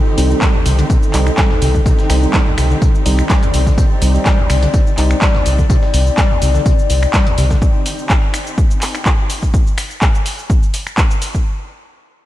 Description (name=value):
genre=acid house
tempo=125 BPM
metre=4/4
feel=swing 54% on 16ths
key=C dorian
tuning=A4 = 440 Hz
part: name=warbly tape-like pad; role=sustained chords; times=0.0-9.5 s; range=Eb3 to D5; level=-23 LUFS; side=left 2 dB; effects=chorus, built-in reverb, sidechain pumping
part: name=warm studio string section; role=texture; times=0.0-9.5 s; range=C4 to G4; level=-25 LUFS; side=left 2 dB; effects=sidechain pumping
part: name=percussive organ stab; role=stabs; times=0.2-5.2 s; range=G3 to Eb4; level=-23 LUFS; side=right 2 dB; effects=chorus, diffuse ambient delay
part: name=round analog bass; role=bass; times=0.2-7.5 s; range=C2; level=-14 LUFS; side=equal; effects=sidechain pumping
part: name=breakbeat sampler-style drum kit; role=drums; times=0.2-7.6 s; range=hi-hat, snare drum, tambourine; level=-33 LUFS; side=left 1 dB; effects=none
part: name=electro analog drum machine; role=drums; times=0.2-11.4 s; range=finger snaps, handclaps, hi-hat, shaker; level=-21 LUFS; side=equal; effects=studio reverb
part: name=overdriven acid bass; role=riff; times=0.4-7.6 s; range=C2 to G3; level=-22 LUFS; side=right 1 dB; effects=distortion, lush chorus, sidechain pumping, diffuse ambient delay
part: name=electronic kick drum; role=drums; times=0.4-11.4 s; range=none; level=-14 LUFS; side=equal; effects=studio reverb
room=light reverb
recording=none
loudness=-12 LUFS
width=side -14 dB against mid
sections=0.0-11.5 A section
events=drop 0.0-11.5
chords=0.0 Cm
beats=0.42 0.90 1.38 | 1.86 2.34 2.82 3.30 | 3.78 4.26 4.74 5.22 | 5.70 6.18 6.66 7.14 | 7.62 8.10 8.58 9.06 | 9.54 10.02 10.50 10.98